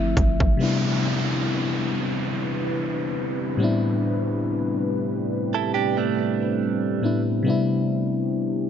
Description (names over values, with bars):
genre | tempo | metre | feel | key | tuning
contemporary R&B | 70 BPM | 4/4 | swing 54% on 16ths | C major | A4 = 441 Hz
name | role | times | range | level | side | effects
FM electric piano | accompaniment | 0.0-8.7 s | A2 to E5 | -24 LUFS | left 3 dB | chorus
deep dark ambient pad | sustained chords | 0.0-8.7 s | C3 to B4 | -27 LUFS | right 3 dB | chorus, built-in reverb, sidechain pumping
clean 808-style bass | bass | 0.0-0.6 s | G1 | -24 LUFS | right 1 dB | none
trap drum kit | drums | 0.2-0.6 s | hi-hat, kick drum | -22 LUFS | right 1 dB | overdrive
downlifter | sound effects | 0.6-7.5 s | none | -32 LUFS | right 2 dB | none
direct-recorded clean electric guitar | arpeggios | 5.5-7.2 s | A3 to A4 | -27 LUFS | right 13 dB | spring reverb, digital delay
room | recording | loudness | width
light reverb | nothing above 7.5 kHz | -21 LUFS | side -8 dB against mid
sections
0.6-8.7 A section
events
none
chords
0.0 G13sus4; 0.6 Cmaj9; 3.6 Am11; 7.5 Cmaj9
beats
| 0.60 1.46 2.31 3.17 | 4.03 4.88 5.74 6.60 | 7.46 8.31